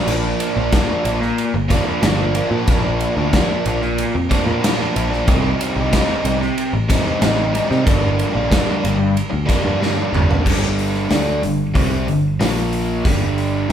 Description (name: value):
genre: classic rock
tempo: 93 BPM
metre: 4/4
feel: straight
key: G minor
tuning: A4 = 440 Hz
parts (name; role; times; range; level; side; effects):
- biting overdriven guitar; riff; 0.0-13.7 s; G2 to Eb4; -19 LUFS; equal; none
- picked electric bass; bass; 0.1-13.7 s; G1 to C3; -22 LUFS; equal; none
- gated 80s drum kit; drums; 0.1-13.7 s; crash cymbal, hi-hat, kick drum, ride cymbal, snare drum, toms; -20 LUFS; equal; none
room: moderate large studio reverb, RT60 1.2 s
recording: band playing live in one room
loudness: -15 LUFS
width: side -9 dB against mid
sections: 0.0-10.5 A section; 10.5-13.7 B section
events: drum fill 9.8-10.5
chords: 0.0 Bb; 5.3 Cm; 7.9 Gm; 10.5 G5; 12.4 Bb5; 13.1 G5